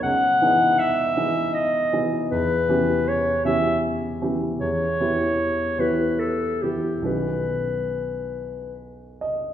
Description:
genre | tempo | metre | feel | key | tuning
classical, impressionist duo for clarinet and grand piano | 68-81 BPM | 3/4 | rubato | unclear | A4 = 440 Hz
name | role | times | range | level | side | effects
warm clarinet | melody | 0.0-8.8 s | G4 to F#5 | -22 LUFS | left 1 dB | none
warm baby grand piano | accompaniment | 0.0-9.5 s | B1 to D#5 | -24 LUFS | right 1 dB | none
room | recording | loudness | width
wet recital hall reverb, RT60 1.7 s | heard from further back in the room | -20 LUFS | side -10 dB against mid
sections
0.0-9.5 A section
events
none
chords
0.0 C#m11; 2.3 Em6; 7.1 B69

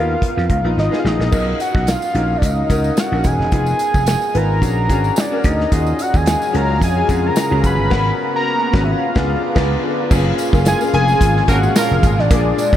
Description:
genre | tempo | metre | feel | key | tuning
polished 1980s jazz-funk pop | 109 BPM | 4/4 | swing 54% on 16ths | F# major | A4 = 440 Hz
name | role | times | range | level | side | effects
fat analog lead | melody | 0.0-12.8 s | D5 to B5 | -20 LUFS | equal | chorus, diffuse ambient delay
clear grand piano | accompaniment | 0.0-12.8 s | A#3 to Cb5 | -22 LUFS | left 2 dB | analog chorus
vintage slap bass | bass | 0.0-12.8 s | D#1 to E#2 | -18 LUFS | equal | none
modern studio drum kit | drums | 0.2-12.8 s | crash cymbal, hi-hat, kick drum, snare drum | -19 LUFS | equal | none
tambourine | percussion | 1.3-12.8 s | none | -34 LUFS | right 6 dB | none
lush unison pad | sustained chords | 6.3-12.8 s | A#2 to E#5 | -24 LUFS | equal | chorus, phaser
warm horn section | second line | 11.5-11.9 s | E#3 to A#4 | -24 LUFS | right 3 dB | diffuse ambient delay
room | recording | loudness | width
moderate huge ambient reverb, RT60 8.7 s | dreamy mix soaked in reverb | -14 LUFS | side -11 dB against mid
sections
0.0-1.3 A section; 1.3-10.1 B section; 10.1-12.8 C section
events
drum fill 0.8-1.3; band accent 7.9-10.1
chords
0.0 C#13 (rootless); 1.3 Bmaj9; 3.5 Fm7b5; 4.6 A#7alt; 5.7 D#m11; 7.9 G#m11; 9.0 C#7b9; 10.1 F#maj9

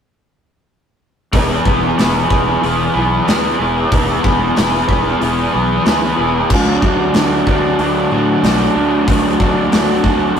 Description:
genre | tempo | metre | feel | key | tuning
rock, shoegaze and dream pop | 93 BPM | 4/4 | straight | E mixolydian | A4 = 440 Hz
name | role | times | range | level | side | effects
raw garage guitar | riff | 1.3-10.4 s | D3 to B4 | -14 LUFS | equal | overdrive
fuzz fingered electric bass | bass | 1.3-10.4 s | E1 to A2 | -22 LUFS | equal | overdrive
gated 80s drum kit | drums | 1.3-10.4 s | crash cymbal, hi-hat, kick drum, snare drum | -17 LUFS | equal | none
room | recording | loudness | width
wet booth ambience, RT60 0.3 s | rough rehearsal-room recording | -12 LUFS | side -8 dB against mid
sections
1.3-10.4 A section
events
none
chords
1.3 E; 6.5 D

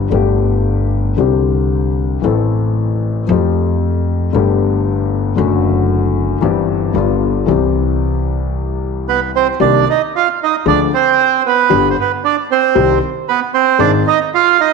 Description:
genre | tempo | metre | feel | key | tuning
tango | 114 BPM | 4/4 | rubato | C major, C harmonic minor from 9.6 s | A4 = 439 Hz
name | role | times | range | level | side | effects
dark concert grand piano | accompaniment | 0.0-14.0 s | G1 to A4 | -15 LUFS | left 6 dB | none
upright bass | bass | 0.0-14.0 s | F#1 to F2 | -19 LUFS | right 2 dB | none
bandoneon | melody | 9.1-14.7 s | B3 to F5 | -12 LUFS | right 12 dB | slapback echo
room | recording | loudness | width
moderate echo chamber reverb, RT60 2.0 s | 1960s-style stereo with parts hard left and right | -12 LUFS | side -5 dB against mid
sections
0.0-9.6 A section; 9.6-14.7 B section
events
none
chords
0.1 Gadd9; 1.2 Csus2; 2.2 Am; 3.3 Fadd9; 4.3 Gadd9; 5.4 D/F#; 6.4 C/G; 7.0 G7; 7.5 C; 9.6 Cm7; 10.7 Ddim; 11.7 G; 12.7 Cm; 13.8 Ab

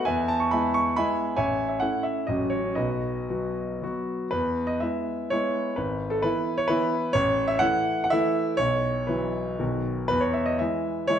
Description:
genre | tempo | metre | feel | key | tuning
classical, romantic triple-time dance for piano with dotted rhythms | 109-147 BPM | 3/4 | rubato | E major | A4 = 440 Hz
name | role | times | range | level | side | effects
warm concert grand piano | solo | 0.0-11.2 s | G#1 to C#6 | -23 LUFS | equal | none
room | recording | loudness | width
moderate recital hall reverb, RT60 1.4 s | none | -23 LUFS | side -9 dB against mid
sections
0.0-4.3 A section; 4.3-11.2 B section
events
none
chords
0.1 E; 1.4 A; 2.3 F#m/A; 2.8 B; 4.3 E; 5.8 E/G#; 7.2 A5; 8.6 Bsus4; 9.6 B; 10.1 E

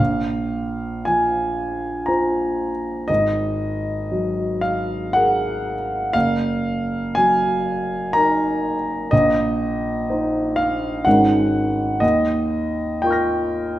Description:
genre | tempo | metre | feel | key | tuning
classical, impressionist solo piano | 60 BPM | 3/4 | uneven beats, rubato | Bb minor | A4 = 440 Hz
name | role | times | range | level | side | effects
warm grand piano | solo | 0.0-13.8 s | Gb1 to Bb6 | -18 LUFS | equal | none
room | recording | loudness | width
wet recital hall reverb, RT60 1.4 s | none | -18 LUFS | side -14 dB against mid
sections
0.0-13.8 A section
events
none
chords
0.0 Bbsus2; 3.1 Absus2; 6.1 Gb69; 9.1 Bbsus24; 11.1 Ab9sus4; 12.0 Eb9

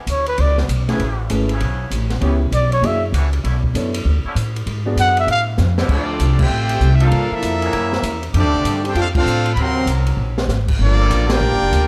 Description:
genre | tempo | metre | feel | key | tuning
jazz, big band swing | 196 BPM | 4/4 | swing 63% on 8ths | D minor from 5.9 s | A4 = 440 Hz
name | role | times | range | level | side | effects
muted trombone section | sustained chords | 0.0-11.4 s | C#3 to A#4 | -32 LUFS | equal | none
breathy trumpet | melody | 0.1-5.4 s | B4 to F#5 | -21 LUFS | equal | plate reverb
upright bass | bass | 0.1-11.9 s | F1 to A2 | -20 LUFS | equal | none
open jazz drum kit | drums | 0.1-11.8 s | crash cymbal, hi-hat, kick drum, ride cymbal, snare drum | -27 LUFS | equal | none
warm concert grand piano | accompaniment | 0.9-5.3 s | A3 to D5 | -25 LUFS | equal | none
brilliant trumpet section | melody | 5.9-11.9 s | Bb3 to C6 | -24 LUFS | equal | plate reverb
mellow trombone section | second line | 5.9-11.9 s | C3 to G4 | -24 LUFS | equal | none
room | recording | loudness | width
light reverb | dark, warm production | -18 LUFS | mono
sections
0.0-5.9 A section; 5.9-11.9 B section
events
trumpet solo 0.0-5.9; drum fill 5.6-5.9, 10.2-10.5; band accent 6.4, 9.1, 11.3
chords
0.0 E7 (rootless); 1.0 Amaj9; 2.2 C#m7b5; 2.8 F#7b13; 3.4 Bm11; 4.7 G#m7b5; 5.3 A5; 5.9 Dm9; 7.1 Gm9; 7.7 F#9; 8.3 F69; 9.6 D7alt; 10.8 Gm9

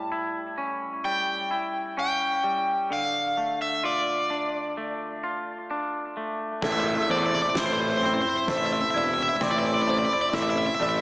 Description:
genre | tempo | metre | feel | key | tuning
post-rock | 65 BPM | 4/4 | straight | A minor | A4 = 442 Hz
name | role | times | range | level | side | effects
crunchy overdriven guitar | melody | 0.0-11.0 s | C5 to A5 | -26 LUFS | equal | harmonic tremolo, analog delay
twangy electric guitar | arpeggios | 0.0-11.0 s | A2 to F4 | -30 LUFS | equal | analog delay
rich chamber string section | sustained chords | 6.6-11.0 s | C3 to E4 | -34 LUFS | equal | none
felt-muted upright piano | arpeggios | 6.6-11.0 s | A4 to D5 | -34 LUFS | right 1 dB | analog delay
fuzz picked electric bass | bass | 6.6-11.0 s | E1 to E2 | -29 LUFS | equal | overdrive
soft-mallet drum kit | drums | 6.6-10.6 s | crash cymbal, kick drum, snare drum, toms | -33 LUFS | equal | none
room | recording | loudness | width
wet lush hall reverb, RT60 2.4 s | dreamy mix soaked in reverb, small speaker sound | -23 LUFS | side -23 dB against mid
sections
0.0-6.6 A section; 6.6-11.0 B section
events
none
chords
0.0 A7; 2.9 Dm; 6.6 Am

